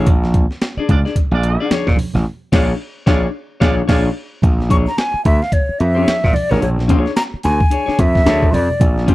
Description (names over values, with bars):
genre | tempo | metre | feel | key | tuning
funk | 110 BPM | 4/4 | swing 60% on 16ths | Bb mixolydian | A4 = 442 Hz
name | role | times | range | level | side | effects
clean electric guitar | accompaniment | 0.0-9.1 s | D4 to D5 | -20 LUFS | left 5 dB | none
gritty slap bass | bass | 0.0-9.1 s | A1 to Bb2 | -16 LUFS | equal | overdrive
breakbeat sampler-style drum kit | drums | 0.1-9.1 s | crash cymbal, hi-hat, kick drum, snare drum | -16 LUFS | equal | none
congas | percussion | 0.1-9.1 s | none | -24 LUFS | right 3 dB | none
warm horn section | second line | 0.9-4.0 s | Ab3 to D5 | -24 LUFS | right 5 dB | none
breathy jazz flute | melody | 4.7-9.1 s | Bb4 to C#6 | -19 LUFS | left 1 dB | none
room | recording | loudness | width
little or no reverb | dry, close 1970s-style studio recording | -13 LUFS | side -17 dB against mid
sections
0.0-4.4 A section; 4.4-9.1 B section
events
band accent 2.2-4.4; flute solo 4.4-9.1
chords
0.0 Bb7#9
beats
| 0.07 0.61 1.16 1.70 | 2.25 2.79 3.34 3.89 | 4.43 4.98 5.53 6.07 | 6.62 7.16 7.71 8.26 | 8.80